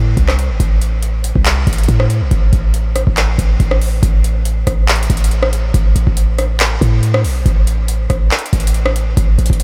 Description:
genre	hip hop, trap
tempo	140 BPM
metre	4/4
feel	half-time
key	A minor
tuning	A4 = 440 Hz
part	warm 808-style bass	bass	0.0-9.6 s	G#1 to A2	-17 LUFS	equal	none
part	booming analog drum machine	drums	0.2-9.6 s	handclaps, hi-hat, kick drum, rim click	-17 LUFS	equal	overdrive
room	light reverb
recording	none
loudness	-14 LUFS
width	mono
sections	0.0-4.0 A section; 4.0-9.6 B section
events	none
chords	none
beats	0.17 | 0.60 1.03 1.46 1.89 | 2.31 2.74 3.17 3.60 | 4.03 4.46 4.88 5.31 | 5.74 6.17 6.60 7.03 | 7.46 7.88 8.31 8.74 | 9.17 9.60

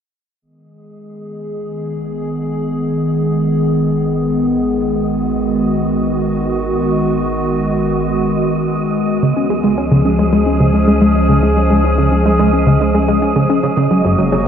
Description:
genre	ambient, sequencer-driven space music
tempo	109 BPM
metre	4/4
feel	straight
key	G# dorian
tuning	A4 = 441 Hz
part	evolving wavetable pad	sustained chords	0.4-14.5 s	C#3 to G#4	-16 LUFS	equal	chorus, built-in reverb
part	round analog bass	bass	0.4-14.5 s	F#1 to C#2	-22 LUFS	equal	none
part	wind-like tuned noise texture	texture	1.2-14.5 s	D#5	-26 LUFS	right 5 dB	built-in reverb
part	tight sequenced synth	riff	9.2-14.4 s	F#2 to C#4	-14 LUFS	equal	chorus, tape echo
room	moderate plate reverb, RT60 2.6 s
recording	dark, warm production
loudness	-13 LUFS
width	side -8 dB against mid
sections	0.4-14.5 A section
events	fade-in on analog synth bass 0.4-14.5; fade-in on synth texture 0.4-14.5; filter sweep on ambient pad 0.4-14.5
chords	0.4 G#m; 9.2 C#; 13.6 F#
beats	| 0.42 0.97 1.52 2.07 | 2.62 3.17 3.73 4.28 | 4.83 5.38 5.93 6.48 | 7.03 7.58 8.13 8.68 | 9.23 9.78 10.33 10.88 | 11.43 11.98 12.53 13.08 | 13.63 14.18

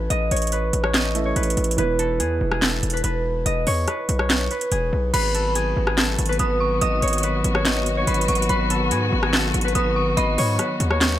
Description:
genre	hip hop, trap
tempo	143 BPM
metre	4/4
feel	half-time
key	G# phrygian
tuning	A4 = 439 Hz
part	concert harp	melody	0.0-11.2 s	G#4 to D#5	-24 LUFS	equal	low-pass filter
part	clear concert grand piano	accompaniment	0.0-5.2 s	E3 to E5	-31 LUFS	right 3 dB	low-pass filter
part	distorted 808-style bass	bass	0.0-11.2 s	E1 to G#2	-23 LUFS	equal	distortion
part	trap drum kit	drums	0.1-11.1 s	crash cymbal, handclaps, hi-hat, rim click, snare drum	-23 LUFS	equal	overdrive
part	dark detuned synth bell	second line	5.1-10.6 s	B5 to D#6	-28 LUFS	left 1 dB	chorus, ping-pong delay
part	muted chamber string section	sustained chords	5.1-11.2 s	D#3 to F#4	-26 LUFS	left 1 dB	none
room	little or no reverb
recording	none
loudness	-19 LUFS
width	side -12 dB against mid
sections	0.0-5.1 A section; 5.1-11.2 B section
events	none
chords	0.0 A; 1.8 E; 5.1 G#m7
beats	| 0.10 0.52 0.94 1.36 | 1.78 2.20 2.62 3.04 | 3.46 3.88 4.30 4.72 | 5.14 5.56 5.98 6.40 | 6.82 7.24 7.65 8.07 | 8.49 8.91 9.33 9.75 | 10.17 10.59 11.01

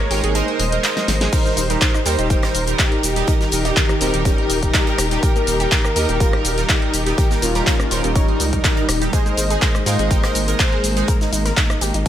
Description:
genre	progressive house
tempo	123 BPM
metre	4/4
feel	straight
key	unclear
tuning	A4 = 440 Hz
part	soft supersaw	melody	0.0-11.1 s	G3 to Eb5	-25 LUFS	left 1 dB	cassette tape, tape echo
part	airy dreamy lead	second line	0.0-11.1 s	Eb4 to Eb5	-30 LUFS	left 2 dB	none
part	warm studio string section	sustained chords	0.0-12.1 s	Eb3 to Bb4	-27 LUFS	left 1 dB	sidechain pumping
part	analog pluck	arpeggios	0.0-12.1 s	Eb3 to Db5	-28 LUFS	equal	chorus, sidechain pumping, ping-pong delay
part	chorused polysynth	stabs	0.1-11.1 s	G3 to Bb4	-26 LUFS	right 6 dB	sidechain pumping, ping-pong delay
part	saturated sub bass	bass	0.1-12.1 s	Eb1 to Ab2	-22 LUFS	equal	sidechain pumping
part	big rock drum kit	drums	0.1-11.9 s	hi-hat, snare drum	-32 LUFS	right 3 dB	none
part	big-room dance drum kit	drums	0.1-12.1 s	crash cymbal, handclaps, hi-hat, rim click, shaker, snare drum	-22 LUFS	left 1 dB	studio reverb
part	electronic kick drum	drums	1.3-12.1 s	none	-18 LUFS	equal	studio reverb
room	light reverb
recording	none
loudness	-15 LUFS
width	side -11 dB against mid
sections	0.0-12.1 A section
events	kick drops out 0.4-1.3; drum fill 1.0-1.3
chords	0.0 Absus2; 1.3 Eb; 9.1 Absus2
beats	0.35 0.84 | 1.33 1.81 2.30 2.79 | 3.28 3.77 4.25 4.74 | 5.23 5.72 6.21 6.69 | 7.18 7.67 8.16 8.64 | 9.13 9.62 10.11 10.60 | 11.08 11.57 12.06

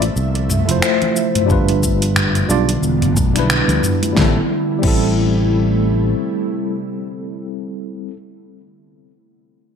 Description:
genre	sunset chillout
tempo	90 BPM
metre	4/4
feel	swing 58% on 16ths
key	A minor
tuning	A4 = 441 Hz
part	tine electric piano	accompaniment	0.0-8.2 s	G3 to D5	-21 LUFS	moving between left 8 dB and right 1 dB	slow stereo tremolo, auto-pan, digital delay
part	ethereal airy pad	sustained chords	0.0-7.5 s	C3 to E5	-22 LUFS	right 1 dB	ensemble chorus, built-in reverb
part	sustaining fretless electric bass	bass	0.0-6.1 s	E1 to D2	-18 LUFS	equal	none
part	smooth R&B drum kit	drums	0.0-5.1 s	crash cymbal, finger snaps, hi-hat, shaker, snare drum, toms	-20 LUFS	equal	gated reverb
part	congas	percussion	0.5-4.1 s	none	-28 LUFS	left 4 dB	none
part	electronic kick drum	drums	1.5-5.1 s	none	-19 LUFS	equal	none
room	light reverb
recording	bright 1980s-style digital production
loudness	-14 LUFS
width	side -7 dB against mid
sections	0.0-4.2 A section; 4.2-6.8 B section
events	none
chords	0.0 Fmaj7; 1.5 G7; 2.8 Em7; 4.2 Am7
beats	0.16 0.83 | 1.50 2.16 2.83 3.50 | 4.16 4.83 5.50 6.16

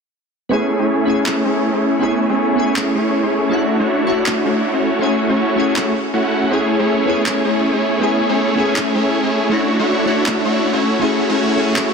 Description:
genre	future bass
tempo	160 BPM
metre	4/4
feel	half-time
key	A major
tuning	A4 = 440 Hz
part	glassy digital keys	accompaniment	0.5-11.9 s	A3 to C#5	-20 LUFS	left 2 dB	chorus, phaser, tape echo
part	supersaw chords	riff	0.5-11.9 s	A3 to F#5	-16 LUFS	equal	low-pass filter, tape echo
part	electronic handclaps	drums	1.3-11.8 s	none	-26 LUFS	equal	overdrive
room	light reverb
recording	dense, heavily limited modern master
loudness	-14 LUFS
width	side -5 dB against mid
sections	0.5-11.9 A section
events	filter sweep on supersaw synth 0.5-11.9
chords	0.5 Amaj7; 3.5 Dmaj9; 4.8 F#m7; 6.5 Amaj7; 9.5 Dmaj9; 10.8 F#m7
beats	| 0.51 0.89 1.26 1.64 | 2.01 2.39 2.76 3.14 | 3.51 3.89 4.26 4.64 | 5.01 5.39 5.76 6.14 | 6.51 6.89 7.26 7.64 | 8.01 8.39 8.76 9.14 | 9.51 9.89 10.26 10.64 | 11.01 11.39 11.76

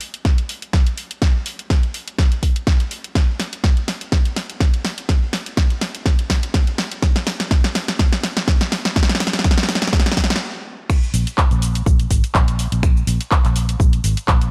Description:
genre	deep house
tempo	124 BPM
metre	4/4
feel	swing 55% on 16ths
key	unclear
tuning	A4 = 440 Hz
part	house drum kit	drums	0.0-14.5 s	crash cymbal, finger snaps, handclaps, hi-hat, shaker, snare drum	-24 LUFS	equal	studio ambience
part	electronic kick drum	drums	0.2-14.4 s	none	-18 LUFS	equal	studio ambience
part	vintage muted fingered electric bass	bass	11.1-14.5 s	Ab1 to Bb1	-21 LUFS	equal	none
room	light reverb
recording	none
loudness	-19 LUFS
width	mono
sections	0.0-10.9 A section; 10.9-14.5 B section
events	build-up 0.0-10.9; drum fill 0.0-10.4; stop 10.4-10.9; drop 10.9-14.5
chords	none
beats	0.25 0.73 | 1.22 1.70 2.19 2.67 | 3.15 3.64 4.12 4.61 | 5.09 5.57 6.06 6.54 | 7.03 7.51 7.99 8.48 | 8.96 9.44 9.93 10.41 | 10.90 11.38 11.86 12.35 | 12.83 13.31 13.80 14.28

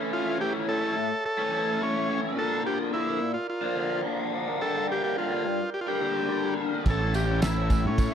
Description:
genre	psychedelic rock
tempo	107 BPM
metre	4/4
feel	straight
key	A phrygian dominant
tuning	A4 = 441 Hz
part	mellow tonewheel organ	sustained chords	0.0-8.1 s	A4 to A5	-37 LUFS	right 4 dB	slow rotary speaker
part	raw garage guitar	riff	0.0-8.1 s	G2 to E4	-29 LUFS	left 2 dB	overdrive, flanger
part	combo organ	melody	0.1-8.1 s	C#4 to A4	-29 LUFS	equal	none
part	fuzz fingered electric bass	bass	6.9-8.1 s	A1 to A2	-26 LUFS	equal	overdrive
part	cloth-damped thuddy drum kit	drums	6.9-8.1 s	kick drum, ride cymbal, snare drum	-27 LUFS	right 1 dB	none
part	tambourine	percussion	6.9-8.1 s	none	-44 LUFS	right 7 dB	none
room	light reverb, small room ambience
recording	none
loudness	-25 LUFS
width	side -8 dB against mid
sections	0.0-8.1 A section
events	none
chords	0.0 A; 2.4 Bb; 4.6 Gm; 6.9 A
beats	| 0.11 0.67 1.24 1.80 | 2.36 2.92 3.48 4.05 | 4.61 5.17 5.73 6.29 | 6.86 7.42 7.98

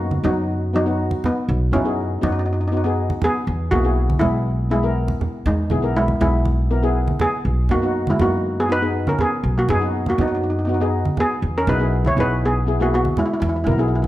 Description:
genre	calypso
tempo	121 BPM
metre	4/4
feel	straight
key	B major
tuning	A4 = 440 Hz
part	steel pan	melody	0.0-14.1 s	F#3 to C#5	-22 LUFS	equal	none
part	steel pan	accompaniment	0.0-14.0 s	B3 to A#4	-24 LUFS	left 1 dB	none
part	upright bass	bass	0.0-14.1 s	B1 to F#2	-21 LUFS	equal	none
part	congas	percussion	0.1-14.1 s	none	-26 LUFS	right 2 dB	none
room	moderate recital hall reverb, RT60 1.6 s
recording	none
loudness	-17 LUFS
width	side -15 dB against mid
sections	0.0-14.1 A section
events	none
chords	0.0 B6; 3.5 E; 7.4 B6; 11.4 E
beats	0.48 0.98 | 1.48 1.98 2.47 2.97 | 3.47 3.96 4.46 4.96 | 5.46 5.95 6.45 6.95 | 7.45 7.94 8.44 8.94 | 9.43 9.93 10.43 10.93 | 11.42 11.92 12.42 12.92 | 13.41 13.91

